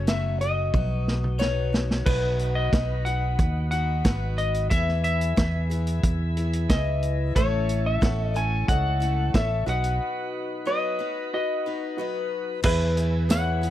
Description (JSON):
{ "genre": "folk rock and heartland rock", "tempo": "91 BPM", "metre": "4/4", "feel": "straight", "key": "unclear", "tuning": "A4 = 441 Hz", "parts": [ { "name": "electric slide guitar", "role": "melody", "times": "0.0-13.7 s", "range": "B4 to G#5", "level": "-28 LUFS", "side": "left 2 dB", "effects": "none" }, { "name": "picked steel-string acoustic guitar", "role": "accompaniment", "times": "0.0-13.7 s", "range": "F#2 to B4", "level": "-33 LUFS", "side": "left 8 dB", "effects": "none" }, { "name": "fingered electric bass", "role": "bass", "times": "0.0-13.7 s", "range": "F#1 to E2", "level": "-25 LUFS", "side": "right 1 dB", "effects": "none" }, { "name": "vintage drum kit", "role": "drums", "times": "0.1-13.7 s", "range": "crash cymbal, hi-hat, kick drum, snare drum, toms", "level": "-25 LUFS", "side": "right 1 dB", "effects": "none" }, { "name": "tonewheel organ", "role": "sustained chords", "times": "2.1-13.7 s", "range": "D#4 to C#5", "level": "-37 LUFS", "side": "right 1 dB", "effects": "slow rotary speaker" }, { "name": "clear baby grand piano", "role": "accompaniment", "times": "7.4-13.7 s", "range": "F#4 to F#5", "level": "-35 LUFS", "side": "right 7 dB", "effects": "none" }, { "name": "tambourine", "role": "percussion", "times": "13.3-13.5 s", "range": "none", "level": "-40 LUFS", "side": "right 10 dB", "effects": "none" } ], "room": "little or no reverb", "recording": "dry, close 1970s-style studio recording", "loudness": "-22 LUFS", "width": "side -12 dB against mid", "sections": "0.0-2.1 A section; 2.1-12.6 B section; 12.6-13.7 C section", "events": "drum fill 0.7-2.1; break 10.0-12.6", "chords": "0.0 F#m; 0.7 B; 4.7 E; 7.4 A; 9.7 B; 12.6 E" }